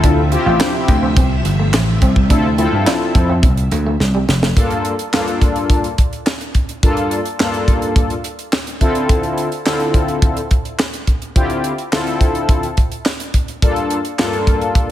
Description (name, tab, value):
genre	early-eighties boogie funk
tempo	106 BPM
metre	4/4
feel	straight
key	G dorian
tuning	A4 = 440 Hz
part	mellow synth brass	accompaniment	0.0-14.9 s	G2 to A4	-19 LUFS	left 2 dB	chorus
part	string machine, full ensemble	sustained chords	0.0-4.5 s	C3 to E5	-26 LUFS	equal	ensemble chorus
part	electric guitar through a small old amp	riff	0.0-4.5 s	G3 to F4	-23 LUFS	right 1 dB	wide subtle chorus
part	vintage slap bass	bass	0.0-4.5 s	F1 to G2	-16 LUFS	equal	none
part	tight funk drum kit	drums	0.0-14.9 s	handclaps, hi-hat, kick drum, snare drum	-16 LUFS	equal	none
room	light reverb, studio reverb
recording	none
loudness	-14 LUFS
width	side -12 dB against mid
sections	0.0-4.6 A section; 4.6-14.9 B section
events	drum fill 4.0-4.6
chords	0.0 Dm9; 4.6 Gm7; 8.8 Dm9; 13.6 Gm7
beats	| 0.04 0.60 1.17 1.74 | 2.30 2.87 3.43 4.00 | 4.57 5.13 5.70 6.26 | 6.83 7.40 7.96 8.53 | 9.09 9.66 10.23 10.79 | 11.36 11.92 12.49 13.06 | 13.62 14.19 14.76